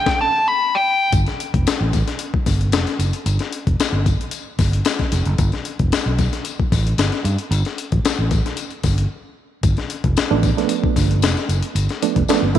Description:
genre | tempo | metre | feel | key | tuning
funk | 113 BPM | 4/4 | straight | unclear | A4 = 440 Hz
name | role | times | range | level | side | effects
nasal lead guitar with a parked wah | melody | 0.0-1.1 s | G5 to B5 | -18 LUFS | left 1 dB | overdrive
breakbeat sampler-style drum kit | drums | 0.1-12.6 s | hi-hat, kick drum, snare drum | -20 LUFS | left 3 dB | none
fingered electric bass | bass | 1.1-12.6 s | F1 to G2 | -18 LUFS | equal | none
tambourine | percussion | 1.1-12.6 s | none | -33 LUFS | left 12 dB | none
reed electric piano | stabs | 10.3-12.6 s | F3 to E4 | -21 LUFS | right 13 dB | overdrive, fast tremolo, tape echo
room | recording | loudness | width
light reverb | 1960s-style stereo with parts hard left and right | -17 LUFS | side -11 dB against mid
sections
0.0-1.1 A section; 1.1-12.6 B section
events
lead electric guitar solo 0.0-1.1; stop 0.1-1.1; break 9.1-9.6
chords
0.0 Gadd9; 1.1 G9

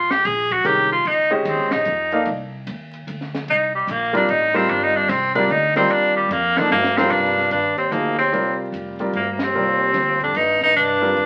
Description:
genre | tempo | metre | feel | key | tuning
modal jazz | 148 BPM | 3/4 | swing 65% on 8ths | C minor from 7.1 s | A4 = 440 Hz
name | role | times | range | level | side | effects
bright tenor saxophone | melody | 0.0-11.3 s | G3 to Ab4 | -20 LUFS | equal | none
upright bass | bass | 0.0-11.3 s | F1 to G2 | -35 LUFS | equal | none
compact cocktail drum kit | drums | 0.1-11.3 s | crash cymbal, hi-hat, kick drum, ride cymbal, snare drum | -35 LUFS | equal | none
clear upright piano | accompaniment | 0.6-11.1 s | Eb3 to F5 | -25 LUFS | equal | none
warm bass clarinet | second line | 6.7-11.3 s | D2 to G2 | -28 LUFS | equal | none
room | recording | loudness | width
wet large studio reverb, RT60 0.9 s | very old 78 rpm record, vinyl crackle | -19 LUFS | mono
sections
0.0-7.1 A section; 7.1-11.3 B section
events
tenor saxophone solo 0.0-7.1; drum fill 6.7-7.1; band accent 9.3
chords
0.0 Bbm11; 2.3 Cm11; 7.1 Cm9

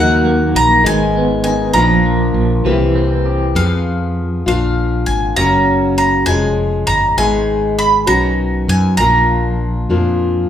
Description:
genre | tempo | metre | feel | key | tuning
acoustic folk duo or small band | 66 BPM (dotted quarters) | 6/8 | straight | unclear | A4 = 443 Hz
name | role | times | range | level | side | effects
bowl-back mandolin | melody | 0.0-10.4 s | F5 to Cb6 | -16 LUFS | right 1 dB | none
picked steel-string acoustic guitar | accompaniment | 0.0-10.5 s | Gb2 to Ab4 | -17 LUFS | left 3 dB | none
electric guitar through a small old amp | arpeggios | 0.0-3.6 s | Eb3 to G4 | -18 LUFS | right 2 dB | tremolo
mellow fretless electric bass | bass | 0.0-10.5 s | F1 to F#2 | -17 LUFS | equal | none
room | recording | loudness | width
wet large studio reverb, RT60 0.8 s | band playing live in one room | -12 LUFS | side -10 dB against mid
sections
0.0-3.6 A section; 3.6-10.5 B section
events
none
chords
0.0 Ebm; 0.9 Abm; 1.8 Bb; 2.7 C7; 3.6 Fdim; 4.5 Bb; 5.4 Gb; 6.3 Db/F; 7.2 Abm; 8.1 Badd9; 9.0 Bb

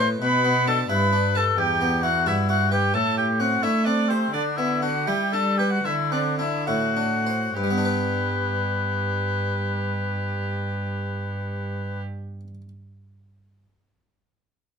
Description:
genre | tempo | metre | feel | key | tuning
classical, baroque-style sonata movement with continuo | 65-88 BPM (dotted quarters) | 12/8 | straight | G major | A4 = 445 Hz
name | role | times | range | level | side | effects
mellow oboe | melody | 0.0-12.0 s | C4 to B4 | -25 LUFS | left 6 dB | none
rich violin | second line | 0.0-12.0 s | G4 to B5 | -29 LUFS | right 7 dB | none
harpsichord | accompaniment | 0.0-12.7 s | E2 to C5 | -28 LUFS | equal | none
rich cello | bass | 0.0-12.0 s | E2 to A3 | -26 LUFS | right 2 dB | none
room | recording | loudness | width
light reverb | minimal, uncompressed stereo recording | -21 LUFS | side -6 dB against mid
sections
0.0-7.6 A section; 7.6-11.3 B section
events
slowing down 2.5-7.6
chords
0.0 G; 1.6 Em; 2.9 Am7; 4.3 G/D; 5.8 D7; 7.6 G

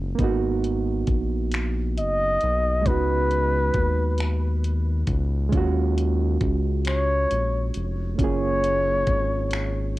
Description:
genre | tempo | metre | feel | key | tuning
slow six-eight R&B | 45 BPM (dotted quarters) | 6/8 | straight | F# major | A4 = 440 Hz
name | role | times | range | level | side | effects
overdriven reed electric piano | accompaniment | 0.0-10.0 s | G#3 to G#4 | -28 LUFS | right 6 dB | cassette tape
round analog bass | bass | 0.0-10.0 s | E#1 to D#2 | -24 LUFS | left 1 dB | none
smooth R&B drum kit | drums | 0.2-10.0 s | finger snaps, hi-hat, kick drum | -26 LUFS | left 1 dB | none
breathy flugelhorn | melody | 2.0-9.9 s | B4 to D#5 | -24 LUFS | left 1 dB | cassette tape, tape echo
room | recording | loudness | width
little or no reverb | home recording on cassette | -21 LUFS | side -17 dB against mid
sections
0.0-10.0 A section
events
none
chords
0.2 G#m9; 2.9 C#9sus4; 5.5 D#m11; 8.2 F#maj9

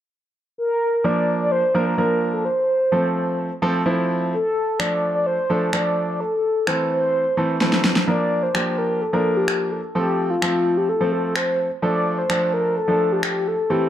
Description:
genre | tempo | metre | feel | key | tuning
dance-pop | 128 BPM | 4/4 | straight | unclear | A4 = 440 Hz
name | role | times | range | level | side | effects
mellow horn-like synth lead | melody | 0.6-13.9 s | F4 to D5 | -21 LUFS | left 1 dB | chorus
clear baby grand piano | accompaniment | 1.0-13.9 s | E3 to Bb4 | -22 LUFS | right 1 dB | none
electronic finger snaps and snare drum | drums | 4.8-13.3 s | none | -22 LUFS | equal | none
room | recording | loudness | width
moderate plate reverb, RT60 1.2 s, digital ambience | dark, warm production | -18 LUFS | side -11 dB against mid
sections
0.6-8.1 A section; 8.1-13.9 B section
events
drum fill 7.6-8.1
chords
0.6 Bb; 2.5 F; 4.3 Dm/F; 6.2 Am; 8.1 Bb; 10.0 F; 11.8 Dm/F

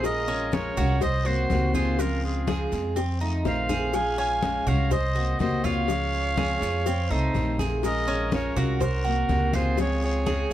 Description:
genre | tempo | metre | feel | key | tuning
latin, Cuban son and guajira | 123 BPM | 4/4 | straight | Bb minor | A4 = 440 Hz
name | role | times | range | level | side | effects
growling trumpet | second line | 0.0-10.5 s | F4 to F5 | -36 LUFS | right 3 dB | none
picked steel-string acoustic guitar | accompaniment | 0.0-10.5 s | C3 to Gb4 | -31 LUFS | left 4 dB | none
Cuban tres | arpeggios | 0.0-10.5 s | C4 to C5 | -31 LUFS | right 4 dB | none
upright bass | bass | 0.0-10.5 s | Bb1 to F2 | -27 LUFS | equal | none
congas | percussion | 0.0-10.5 s | none | -31 LUFS | left 1 dB | none
cowbell and bongos | percussion | 0.0-10.5 s | none | -34 LUFS | left 10 dB | none
guiro | percussion | 0.0-10.5 s | none | -45 LUFS | left 3 dB | none
maracas | percussion | 0.0-10.5 s | none | -46 LUFS | right 5 dB | none
bright clarinet | melody | 0.1-10.5 s | Ab4 to Ab5 | -29 LUFS | right 1 dB | none
room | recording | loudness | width
light reverb | dark, warm production | -22 LUFS | side -12 dB against mid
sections
0.0-10.5 A section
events
drum fill 3.5-3.9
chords
0.0 Bbm7; 1.0 Cm7b5; 2.0 Dbmaj7; 3.0 F7; 3.9 Bbm7; 4.9 Cm7b5; 5.9 Dbmaj7; 6.9 F7; 7.8 Bbm7; 8.8 Cm7b5; 9.8 Dbmaj7

